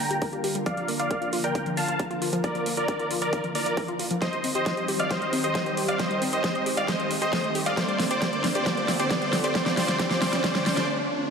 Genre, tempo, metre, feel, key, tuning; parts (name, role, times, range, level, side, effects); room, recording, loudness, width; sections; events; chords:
uplifting trance; 135 BPM; 4/4; straight; A4 = 441 Hz
dense compressed supersaw; melody; 0.0-10.9 s; Bb4 to Bb5; -27 LUFS; equal; cassette tape, sidechain pumping, low-pass filter, ping-pong delay
lush unison pad; sustained chords; 0.0-11.3 s; D3 to C5; -32 LUFS; equal; chorus, phaser, sidechain pumping
big-room dance drum kit; drums; 0.0-10.9 s; hi-hat, snare drum; -30 LUFS; equal; overdrive
riser; sound effects; 1.2-11.3 s; -35 LUFS; right 2 dB
wide unison pluck; arpeggios; 0.1-10.8 s; F3 to F5; -32 LUFS; left 2 dB; sidechain pumping, dub echo
electronic kick drum; drums; 0.2-10.5 s; -32 LUFS; equal; overdrive, high-pass filter on kick
wet lush hall reverb, RT60 2.1 s; -23 LUFS; side -6 dB against mid
0.0-11.3 A section
build-up 0.0-11.3; filter sweep on supersaw synth 0.0-11.3; filter sweep on synth pluck 0.0-11.3; riser 1.2-11.3; drum fill 4.2-10.9; break 10.9-11.3
0.0 Gm; 0.7 Bb; 4.2 Cm; 7.8 Dm7